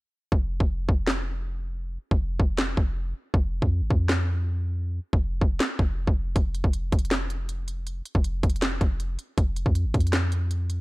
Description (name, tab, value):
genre	hip hop, trap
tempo	159 BPM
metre	4/4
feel	half-time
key	unclear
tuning	A4 = 440 Hz
part	clean 808-style bass	bass	0.3-10.8 s	F1 to F2	-27 LUFS	equal	none
part	trap drum kit	drums	0.3-10.8 s	handclaps, hi-hat, kick drum, snare drum	-24 LUFS	equal	none
room	little or no reverb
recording	none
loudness	-23 LUFS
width	side -21 dB against mid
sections	0.0-10.8 A section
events	break 0.0-0.3; hi-hats muted 0.3-6.4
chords	none